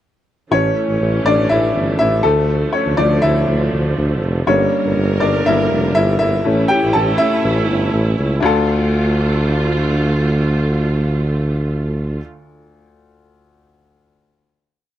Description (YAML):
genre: pop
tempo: 121 BPM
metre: 4/4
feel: straight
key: D harmonic minor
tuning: A4 = 441 Hz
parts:
  - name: clear upright piano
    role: accompaniment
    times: 0.5-14.9 s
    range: D2 to A5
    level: -17 LUFS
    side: left 2 dB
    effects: none
  - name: warm studio string section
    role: sustained chords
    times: 0.5-12.2 s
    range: D3 to Bb4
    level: -22 LUFS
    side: right 3 dB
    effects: none
  - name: warm tuba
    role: bass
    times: 0.5-12.2 s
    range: F1 to D2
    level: -18 LUFS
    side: equal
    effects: none
room: little or no reverb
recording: dry, close 1970s-style studio recording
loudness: -14 LUFS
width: side -12 dB against mid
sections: 0.5-8.4 pre-chorus; 8.4-12.4 final chord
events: upright piano solo 0.5-8.4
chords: 0.5 A; 2.2 Dm; 4.5 Gm; 6.5 A; 8.4 Dm